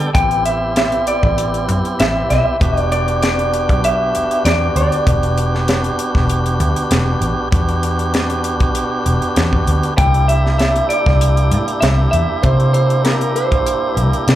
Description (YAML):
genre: straight-eighth soul blues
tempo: 98 BPM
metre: 4/4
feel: straight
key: E minor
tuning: A4 = 444 Hz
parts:
  - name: tonewheel organ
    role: accompaniment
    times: 0.0-14.4 s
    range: G3 to G5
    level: -20 LUFS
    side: right 1 dB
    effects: overdrive, slapback echo
  - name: tight funk drum kit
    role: drums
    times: 0.0-14.4 s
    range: hi-hat, kick drum, snare drum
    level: -19 LUFS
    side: equal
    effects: none
  - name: electric guitar through a small old amp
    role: melody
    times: 0.1-6.0, 10.0-14.2 s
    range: Bb4 to G5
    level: -18 LUFS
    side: right 1 dB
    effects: slapback echo
  - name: vintage muted fingered electric bass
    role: bass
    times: 0.1-14.4 s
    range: E1 to C3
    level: -17 LUFS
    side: equal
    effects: none
room: studio reverb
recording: live gig heard through the venue's PA, club reverb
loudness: -13 LUFS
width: side -13 dB against mid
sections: 0.0-14.4 A section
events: none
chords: 0.1 Am9; 2.6 Em9; 10.0 C7